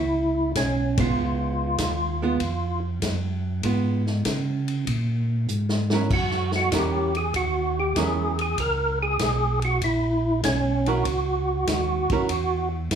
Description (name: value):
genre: soul jazz organ trio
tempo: 97 BPM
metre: 4/4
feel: swing 69% on 8ths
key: unclear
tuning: A4 = 439 Hz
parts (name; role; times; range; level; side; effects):
- percussive tonewheel organ; melody; 0.0-12.7 s; Db4 to Bb4; -24 LUFS; right 1 dB; slow rotary speaker, chorus vibrato
- mellow tonewheel organ; bass; 0.0-13.0 s; Bb1 to Db3; -26 LUFS; equal; slow rotary speaker
- swinging big-band drum kit; drums; 0.6-13.0 s; crash cymbal, hi-hat, kick drum, ride cymbal, snare drum; -29 LUFS; equal; none
- archtop guitar, miked and amplified; accompaniment; 1.0-12.3 s; Gb3 to Bb4; -26 LUFS; right 5 dB; none
room: light reverb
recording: small room reverb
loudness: -22 LUFS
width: side -8 dB against mid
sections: 0.0-13.0 A section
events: band accent 0.9-1.2; drum fill 5.5-6.1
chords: 0.0 Gb7(no3) (rootless); 1.2 Db7; 6.1 Gb7